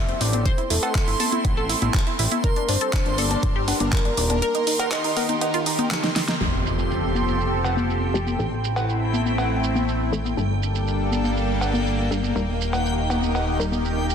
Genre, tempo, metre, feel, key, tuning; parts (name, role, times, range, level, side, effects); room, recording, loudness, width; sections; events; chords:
progressive house; 121 BPM; 4/4; straight; F major; A4 = 441 Hz
soft octave-layered synth lead; melody; 0.0-5.7 s; A4 to E5; -28 LUFS; equal; chorus, sidechain pumping, tape echo
supersaw pad; sustained chords; 0.0-14.1 s; Eb3 to A5; -28 LUFS; right 1 dB; phaser, sidechain pumping
fat analog bass; bass; 0.0-14.1 s; Eb1 to A1; -26 LUFS; equal; tube saturation, sidechain pumping
backwards swelling texture; texture; 0.1-14.1 s; G5 to C6; -32 LUFS; right 2 dB; built-in reverb, sidechain pumping
tight sequenced synth; arpeggios; 0.1-6.3 s; C4 to C5; -28 LUFS; equal; chorus, sidechain pumping, ping-pong delay
pop drum kit; drums; 0.1-14.1 s; handclaps, hi-hat, shaker, snare drum; -27 LUFS; right 1 dB; overdrive, low-pass filter on hats, low-pass filter on snare, low-pass filter on perc, low-pass filter on room
congas and cowbell; percussion; 0.3-13.8 s; -28 LUFS; left 3 dB; sidechain pumping on perc
electronic kick drum; drums; 0.5-4.0 s; -22 LUFS; equal; overdrive
wide unison pluck; stabs; 6.4-14.1 s; G2 to Bb4; -29 LUFS; left 2 dB; sidechain pumping, ping-pong delay
impact; sound effects; 6.4-8.4 s; -29 LUFS; right 1 dB
light reverb, digital ambience; dense, heavily limited modern master; -20 LUFS; side -7 dB against mid
0.0-6.4 A section; 6.4-14.1 B section
drum fill 5.9-6.4; band accent 6.3; impact 6.4-8.4; filter sweep on synth pluck 6.4-14.1
0.5 Am; 2.4 Gmadd9; 4.4 Eb; 6.4 Fadd9; 8.4 Am; 10.4 Gmadd9; 12.4 Eb